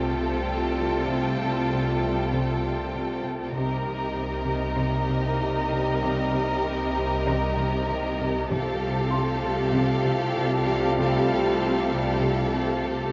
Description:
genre	cinematic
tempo	97 BPM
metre	4/4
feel	straight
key	unclear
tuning	A4 = 439 Hz
part	rich studio violin section	melody	0.0-13.1 s	Eb5 to G5	-37 LUFS	equal	none
part	warm studio violin section	second line	0.0-13.1 s	A4 to Bb4	-33 LUFS	equal	none
part	rich studio viola section	accompaniment	0.0-13.1 s	F4 to G4	-35 LUFS	equal	none
part	clear trombone section	sustained chords	0.0-13.1 s	C3 to G3	-36 LUFS	equal	none
part	dark French horn section	sustained chords	0.0-13.1 s	A3 to F4	-35 LUFS	equal	none
part	rich studio cello section	riff	0.0-13.0 s	C3	-35 LUFS	equal	none
part	rich studio cello section	bass	0.0-13.1 s	C3	-33 LUFS	equal	none
part	warm studio double bass section	bass	0.0-13.1 s	C2	-35 LUFS	equal	none
part	bowed-like drone	drone	0.0-13.1 s	C2	-38 LUFS	equal	none
part	impact	sound effects	0.0-1.1 s	none	barely audible	none	none
part	celesta	texture	0.0-3.6, 9.1-13.1 s	D5 to D6	-39 LUFS	equal	none
part	timpani	percussion	8.5-9.4 s	C3	-38 LUFS	equal	none
room	moderate concert hall reverb, RT60 2.2 s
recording	worn, warbling old tape, cassette tape, warbly pitch drift, nothing above 7.5 kHz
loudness	-25 LUFS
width	mono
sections	0.0-13.1 A section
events	impact 0.0-1.1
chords	0.0 Fadd9/C; 3.6 Cm7; 8.5 Fadd9/C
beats	0.46 | 1.08 1.70 2.31 2.93 | 3.55 4.17 4.79 5.41 | 6.03 6.64 7.26 7.88 | 8.50 9.12 9.74 10.36 | 10.97 11.59 12.21 12.83

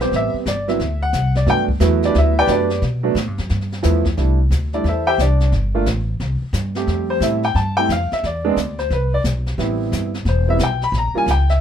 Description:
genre	jazz piano trio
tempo	177 BPM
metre	4/4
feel	swing 64% on 8ths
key	G major, C major from 4.2 s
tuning	A4 = 439 Hz
part	warm baby grand piano	melody	0.0-11.6 s	F3 to B5	-19 LUFS	right 1 dB	none
part	upright bass	bass	0.0-11.6 s	E1 to B2	-19 LUFS	equal	none
part	jazz brush drum kit	drums	0.0-11.6 s	brushed snare drum, hi-hat, kick drum, snare drum	-28 LUFS	left 2 dB	none
room	light reverb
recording	minimal, uncompressed stereo recording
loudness	-16 LUFS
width	side -9 dB against mid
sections	0.0-4.2 A section; 4.2-11.6 A section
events	grand piano solo 0.0-11.6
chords	0.1 Am9; 0.8 D7; 1.5 Gmaj7; 3.5 G13; 4.2 C6; 5.5 Gsus2; 6.2 C5; 6.9 Fmaj9; 8.2 E7(no3); 9.6 Am7; 10.9 Gdim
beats	| 0.12 0.46 0.79 1.13 | 1.47 1.81 2.15 2.48 | 2.82 3.16 3.50 3.84 | 4.17 4.51 4.85 5.19 | 5.53 5.87 6.20 6.54 | 6.88 7.22 7.56 7.90 | 8.23 8.57 8.91 9.25 | 9.59 9.93 10.26 10.60 | 10.94 11.28

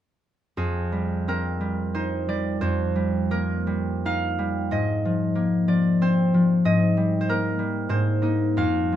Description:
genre	classical, solo harp piece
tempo	78-100 BPM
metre	3/4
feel	rubato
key	F dorian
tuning	A4 = 445 Hz
part	concert harp	solo	0.6-9.0 s	F2 to F5	-21 LUFS	equal	none
room	light reverb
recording	minimal, uncompressed stereo recording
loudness	-21 LUFS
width	side -11 dB against mid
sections	0.6-9.0 A section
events	none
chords	0.6 Fm9; 2.6 Cm7/F; 4.7 Ab69; 6.6 Cm7/Ab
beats	| 0.57 1.27 1.95 | 2.63 3.31 4.05 | 4.72 5.37 6.00 | 6.64 7.26 7.88 | 8.56

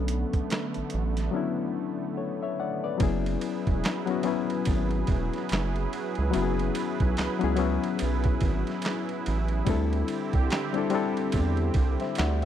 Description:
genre	R&B, neo-soul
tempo	72 BPM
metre	4/4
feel	swing 59% on 16ths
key	F# minor from 3.0 s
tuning	A4 = 440 Hz
part	reed electric piano	accompaniment	0.0-12.4 s	F#3 to F#5	-29 LUFS	left 8 dB	none
part	warm analog pad	sustained chords	0.0-12.4 s	D3 to B4	-34 LUFS	right 6 dB	chorus
part	round analog bass	bass	0.0-12.4 s	E1 to E2	-28 LUFS	right 1 dB	none
part	boom bap sampler-style drum kit	drums	0.1-12.4 s	handclaps, hi-hat, kick drum, ride cymbal, snare drum	-30 LUFS	right 1 dB	none
room	little or no reverb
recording	dry, close 1970s-style studio recording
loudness	-25 LUFS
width	side -10 dB against mid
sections	0.0-3.0 A section; 3.0-12.4 B section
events	none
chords	0.0 Bm9; 3.0 F#9sus4; 9.7 D9sus4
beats	0.50 1.33 2.17 | 3.00 3.83 4.67 5.50 | 6.33 7.17 8.00 8.84 | 9.67 10.50 11.34 12.17

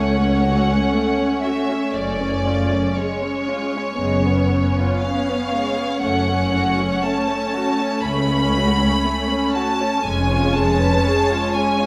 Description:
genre	classical, slow romantic movement for string orchestra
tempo	59 BPM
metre	4/4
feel	rubato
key	F# minor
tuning	A4 = 441 Hz
part	rich studio violin section	melody	0.0-11.9 s	C#5 to B5	-26 LUFS	equal	none
part	warm studio violin section	second line	0.0-11.9 s	G#3 to C#5	-27 LUFS	equal	none
part	rich studio viola section	accompaniment	0.0-11.9 s	G#3 to C#4	-25 LUFS	equal	none
part	rich studio double bass section	bass	0.0-10.9 s	E#1 to C#2	-28 LUFS	equal	none
part	warm studio cello section	bass	0.0-10.9 s	C#2 to F#2	-26 LUFS	equal	none
room	moderate recital hall reverb, RT60 1.6 s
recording	none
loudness	-20 LUFS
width	mono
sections	0.0-11.9 A section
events	none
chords	0.0 F#m; 2.0 C#/F#; 4.0 C#7/F#; 6.0 F#m; 10.0 C#/E#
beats	0.94 | 1.97 2.98 4.00 5.02 | 6.02 7.02 8.03 9.04 | 10.05 11.04

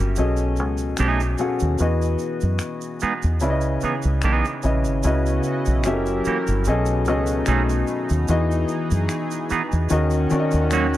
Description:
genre	R&B, neo-soul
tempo	74 BPM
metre	4/4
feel	swing 54% on 16ths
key	C# minor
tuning	A4 = 435 Hz
part	warm grand piano	accompaniment	0.0-11.0 s	B2 to F#5	-23 LUFS	left 2 dB	none
part	deep dub fingered electric bass	bass	0.0-11.0 s	F#1 to F#2	-21 LUFS	equal	none
part	tube shaker and finger snaps	percussion	0.2-11.0 s	none	-34 LUFS	right 1 dB	none
part	clean electric guitar	second line	1.0-10.9 s	E3 to G#4	-27 LUFS	right 5 dB	spring reverb, slapback echo
part	chorused pulse-width pad	sustained chords	5.2-11.0 s	C#3 to D#5	-29 LUFS	right 1 dB	none
room	light reverb, small room reverb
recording	dark, warm production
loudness	-19 LUFS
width	side -14 dB against mid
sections	0.0-5.0 A section; 5.0-11.0 B section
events	none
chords	0.2 B13; 1.8 Emaj7; 3.4 C#m9; 5.0 C#m11; 5.8 F#7b9; 6.7 B13; 8.3 Emaj7; 9.9 D#m7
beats	0.17 0.98 | 1.79 2.60 3.41 4.22 | 5.03 5.84 6.65 7.46 | 8.27 9.09 9.90 10.71

